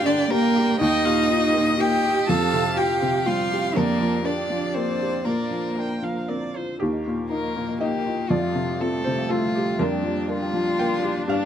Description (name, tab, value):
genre	neoclassical piano and strings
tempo	121 BPM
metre	3/4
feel	rubato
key	Bb major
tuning	A4 = 440 Hz
part	warm violin	melody	0.0-11.5 s	D4 to A5	-26 LUFS	left 3 dB	none
part	warm cello	second line	0.0-11.5 s	F3 to A4	-26 LUFS	right 4 dB	none
part	felt-muted upright piano	accompaniment	0.0-11.5 s	Eb2 to G5	-25 LUFS	equal	none
part	warm viola	accompaniment	0.0-11.5 s	A3 to G5	-32 LUFS	right 2 dB	none
part	pedal harmonium	sustained chords	0.0-11.5 s	A3 to F5	-33 LUFS	right 3 dB	none
part	buzzing marimba with soft mallets	arpeggios	0.1-11.5 s	Eb4 to Bb5	-32 LUFS	left 3 dB	slapback echo
room	light reverb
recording	none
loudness	-20 LUFS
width	side -9 dB against mid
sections	0.0-6.8 A section; 6.8-11.5 A section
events	none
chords	0.0 Gm7; 0.8 Ebadd9; 2.3 Fadd9; 3.8 Bb6/F; 5.3 Bbadd9; 6.8 Ebadd9; 8.3 Fadd9; 9.8 Bb6/F